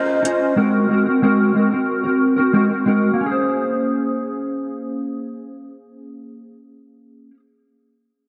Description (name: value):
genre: indie pop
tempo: 91 BPM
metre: 4/4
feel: straight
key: Bb minor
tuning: A4 = 440 Hz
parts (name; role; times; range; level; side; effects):
- mellow electric guitar; accompaniment; 0.0-7.4 s; Ab3 to Eb5; -19 LUFS; equal; analog chorus, warbly pitch drift
room: wet lush hall reverb, RT60 2.9 s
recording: dreamy mix soaked in reverb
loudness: -19 LUFS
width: mono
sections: 0.0-3.2 A section; 3.2-5.8 B section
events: none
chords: 0.0 Dbmaj9; 0.6 Ab9; 3.2 Bbm9